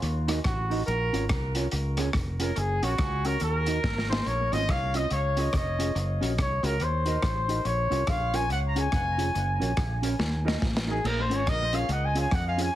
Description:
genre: ska.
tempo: 141 BPM.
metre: 4/4.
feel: swing 61% on 8ths.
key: unclear.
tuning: A4 = 440 Hz.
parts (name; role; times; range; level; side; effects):
mellow trumpet; melody; 0.0-12.8 s; Gb4 to Bb5; -29 LUFS; equal; analog delay.
fingered electric bass; bass; 0.0-12.7 s; F1 to F2; -29 LUFS; equal; none.
crunchy breakbeat drum kit; drums; 0.0-12.7 s; crash cymbal, hi-hat, kick drum, rim click, snare drum; -31 LUFS; equal; analog delay.
mellow electric guitar; accompaniment; 0.3-12.7 s; Db4 to Eb5; -32 LUFS; right 2 dB; wide subtle chorus.
room: light reverb.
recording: heavily compressed radio sound.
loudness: -24 LUFS.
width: side -13 dB against mid.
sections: 0.0-12.8 A section.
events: trumpet solo 0.0-12.8; drum fill 3.8-4.3, 10.2-11.1.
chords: 0.0 Ebm; 0.9 Bbm; 1.7 Db; 2.6 Gb; 3.4 Ebm; 3.8 Ab; 4.3 Bbm; 5.1 Db; 6.0 Gb; 6.8 Ebm; 7.7 Bbm; 8.5 Db; 9.4 Gb; 10.2 Ebm; 11.1 Bbm; 11.9 Db.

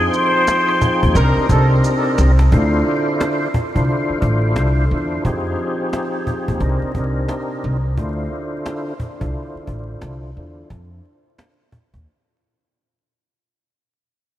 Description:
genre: hip hop, boom-bap hip-hop.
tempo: 88 BPM.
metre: 4/4.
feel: swing 61% on 16ths.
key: unclear.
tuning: A4 = 440 Hz.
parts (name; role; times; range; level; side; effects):
trumpet with plunger mute; melody; 0.0-1.7 s; Ab4 to C5; -20 LUFS; left 1 dB; high-pass filter, low-pass filter, tape echo.
tonewheel organ; accompaniment; 0.0-10.7 s; C3 to G5; -21 LUFS; equal; overdrive, chorus vibrato, slow rotary speaker, high-pass filter, low-pass filter.
upright bass; bass; 0.0-12.0 s; A1 to F2; -18 LUFS; equal; none.
cajon; drums; 0.0-12.1 s; none; -24 LUFS; equal; none.
maracas and woodblock; percussion; 0.1-2.4 s; none; -36 LUFS; right 3 dB; none.
warm horn section; stabs; 1.2-1.4 s; G3 to Bb4; -29 LUFS; right 1 dB; high-pass filter, low-pass filter, tape echo.
room: moderate huge ambient reverb, RT60 6.3 s.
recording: dreamy mix soaked in reverb, vinyl crackle.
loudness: -16 LUFS.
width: side -13 dB against mid.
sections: 0.0-2.5 A section; 2.5-13.4 B section.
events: drum fill 1.8-2.5; fade-out 2.5-13.4; break 10.7-13.4.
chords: 0.0 Fm9; 1.2 Cm9; 2.5 Dm9; 5.2 Fm9; 6.6 Cm9; 8.0 Dm9; 10.7 Ebsus2; 12.1 N.C..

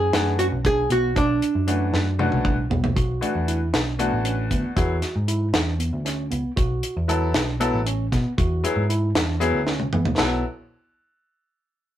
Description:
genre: progressive instrumental, band music in an uneven meter.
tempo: 233 BPM (eighths).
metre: 7/8.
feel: straight.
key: B dorian.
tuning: A4 = 440 Hz.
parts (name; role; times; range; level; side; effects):
archtop guitar, miked and amplified; melody; 0.0-2.4 s; D4 to G#4; -22 LUFS; right 2 dB; none.
tine electric piano; arpeggios; 0.0-10.4 s; B3 to F#4; -29 LUFS; right 3 dB; none.
hollow-body short-scale picked electric bass; bass; 0.0-10.4 s; A1 to E3; -25 LUFS; equal; none.
bright grand piano; accompaniment; 0.1-10.4 s; E3 to A4; -25 LUFS; left 3 dB; none.
deep reggae drum kit; drums; 0.1-10.3 s; crash cymbal, hi-hat, kick drum, snare drum, toms; -24 LUFS; equal; none.
room: moderate studio ambience, RT60 0.5 s.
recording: rough rehearsal-room recording, tube saturation.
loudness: -20 LUFS.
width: side -12 dB against mid.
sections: 0.0-3.0 A section; 3.0-10.2 B section; 10.2-12.0 C section.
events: drum fill 1.9-3.0, 9.7-10.2.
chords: 0.0 Bm9; 3.0 Bm7; 4.8 E9; 6.6 B7(no3); 8.4 E9; 10.2 B5.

